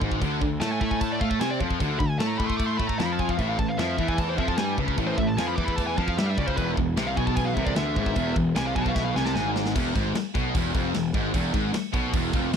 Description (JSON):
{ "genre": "heavy metal", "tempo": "151 BPM", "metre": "4/4", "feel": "straight", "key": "E phrygian dominant", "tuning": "A4 = 440 Hz", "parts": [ { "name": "heavy high-gain guitar", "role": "riff", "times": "0.0-12.6 s", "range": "E2 to C4", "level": "-30 LUFS", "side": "left 12 dB", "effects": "distortion" }, { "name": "sludgy distorted guitar", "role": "riff", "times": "0.0-12.6 s", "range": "E2 to C4", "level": "-34 LUFS", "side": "equal", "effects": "overdrive" }, { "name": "tight distorted guitar", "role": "riff", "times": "0.0-12.6 s", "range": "E2 to C4", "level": "-31 LUFS", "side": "right 13 dB", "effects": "distortion" }, { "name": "fuzz picked electric bass", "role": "bass", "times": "0.0-12.6 s", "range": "E1 to C3", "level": "-30 LUFS", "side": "equal", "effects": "overdrive" }, { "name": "tight metal drum kit", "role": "drums", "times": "0.0-12.6 s", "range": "crash cymbal, kick drum, snare drum", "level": "-29 LUFS", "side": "equal", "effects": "none" }, { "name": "high-gain lead guitar", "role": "melody", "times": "0.6-9.5 s", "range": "B4 to D6", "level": "-31 LUFS", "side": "equal", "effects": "distortion, tape echo" }, { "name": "dark studio string section", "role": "sustained chords", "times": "3.4-9.7 s", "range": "E3 to A5", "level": "-39 LUFS", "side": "equal", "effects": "none" } ], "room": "small room ambience", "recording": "dry, close 1970s-style studio recording", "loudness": "-23 LUFS", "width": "side -7 dB against mid", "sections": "0.0-9.8 A section; 9.8-12.6 B section", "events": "lead electric guitar solo 0.0-9.8; drum fill 9.0-9.8", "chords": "0.2 D5; 3.4 A5; 6.6 E" }